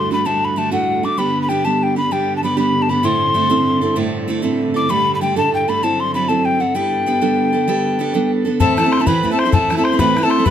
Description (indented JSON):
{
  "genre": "celtic folk, Celtic slide",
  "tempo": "129 BPM (dotted quarters)",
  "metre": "12/8",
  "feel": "straight",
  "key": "unclear",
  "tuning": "A4 = 440 Hz",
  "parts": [
    { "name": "mellow hollow mid whistle", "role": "melody", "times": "0.0-10.5 s", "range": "F#5 to D6", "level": "-18 LUFS", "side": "left 3 dB", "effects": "none" },
    { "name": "picked steel-string acoustic guitar", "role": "accompaniment", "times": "0.0-10.5 s", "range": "D2 to A4", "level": "-18 LUFS", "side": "right 3 dB", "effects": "none" },
    { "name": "clear studio string section", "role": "drone", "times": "0.0-8.6 s", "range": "G2 to G3", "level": "-27 LUFS", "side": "left 2 dB", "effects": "none" },
    { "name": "accordion", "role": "second line", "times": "8.6-10.5 s", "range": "A4 to C5", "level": "-22 LUFS", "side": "left 5 dB", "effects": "none" },
    { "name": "bodhran", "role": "percussion", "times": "8.6-10.5 s", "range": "none", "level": "-20 LUFS", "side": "left 4 dB", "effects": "none" }
  ],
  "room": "light reverb",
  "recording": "none",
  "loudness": "-14 LUFS",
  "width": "side -9 dB against mid",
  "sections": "0.0-8.6 A section; 8.6-10.5 B section",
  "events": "none",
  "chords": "0.0 D; 1.2 G; 3.0 Am; 4.9 Dsus4; 5.8 F#m7b5; 6.7 Gadd9; 8.6 Am"
}